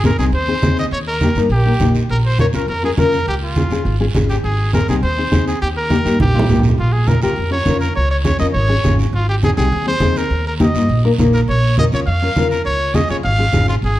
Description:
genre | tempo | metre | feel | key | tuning
latin, cumbia | 204 BPM | 4/4 | straight | unclear | A4 = 440 Hz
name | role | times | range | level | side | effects
bright trumpet | melody | 0.0-14.0 s | F4 to F5 | -21 LUFS | equal | none
nylon-string guitar | accompaniment | 0.0-13.7 s | Bb3 to Db5 | -20 LUFS | left 3 dB | none
upright bass | bass | 0.0-14.0 s | Ab1 to G2 | -18 LUFS | equal | none
congas | percussion | 0.0-14.0 s | none | -20 LUFS | right 1 dB | none
guiro | percussion | 0.0-14.0 s | none | -32 LUFS | right 5 dB | none
room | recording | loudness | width
moderate large studio reverb, RT60 1.3 s | dark, warm production | -13 LUFS | side -14 dB against mid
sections
0.0-14.0 A section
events
drum fill 6.2-6.8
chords
0.0 Ab; 0.9 Eb; 2.1 Bbm; 3.3 Db; 4.4 Ab; 5.6 Eb; 6.8 Bbm; 8.0 Db; 9.1 Ab; 10.3 Eb; 11.5 Bbm; 12.7 Db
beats
0.04 0.33 0.63 | 0.92 1.21 1.51 1.80 | 2.09 2.39 2.68 2.97 | 3.27 3.56 3.85 4.15 | 4.44 4.73 5.03 5.32 | 5.61 5.91 6.20 6.49 | 6.79 7.08 7.37 7.67 | 7.96 8.25 8.55 8.84 | 9.13 9.43 9.72 10.02 | 10.31 10.60 10.89 11.19 | 11.48 11.78 12.07 12.36 | 12.66 12.95 13.24 13.54 | 13.83

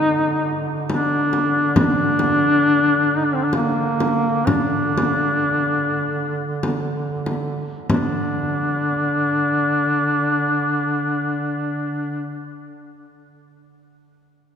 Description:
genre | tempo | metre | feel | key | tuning
caucasian folk, Caucasian lament | 46-69 BPM | 3/4 | rubato | unclear | A4 = 437 Hz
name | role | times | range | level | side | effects
clear duduk | melody | 0.0-12.4 s | Bb3 to Eb4 | -19 LUFS | left 1 dB | none
warm duduk | drone | 0.0-12.5 s | D3 | -26 LUFS | right 3 dB | none
frame drum | percussion | 0.9-8.5 s | none | -24 LUFS | left 1 dB | none
room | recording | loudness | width
wet cathedral reverb, RT60 4.0 s | recorded in a church or concert hall | -18 LUFS | side -8 dB against mid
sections
0.0-7.9 A section; 7.9-11.7 B section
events
slowing down 1.8-7.9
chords
none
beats
0.02 0.89 | 1.76 2.64 3.53 | 4.48 5.49 6.64 | 7.90 9.19 10.44

